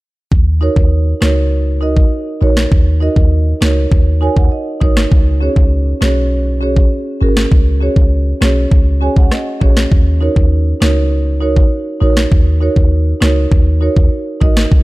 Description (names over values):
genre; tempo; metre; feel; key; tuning
dancehall; 100 BPM; 4/4; straight; Eb minor; A4 = 440 Hz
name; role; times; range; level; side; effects
clean 808-style bass; bass; 0.3-14.8 s; Ab1 to Eb2; -13 LUFS; equal; none
island pop drum kit; drums; 0.3-14.8 s; kick drum, rim click, snare drum; -12 LUFS; equal; overdrive
marimba with medium mallets; accompaniment; 0.6-14.5 s; Db4 to Ab5; -18 LUFS; right 2 dB; none
room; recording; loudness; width
little or no reverb; dark, warm production; -10 LUFS; side -20 dB against mid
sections
0.3-14.8 A section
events
marimba fill 3.9-5.1, 8.7-9.9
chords
0.3 Ebm7; 5.1 Dbsus4; 9.9 Ebm7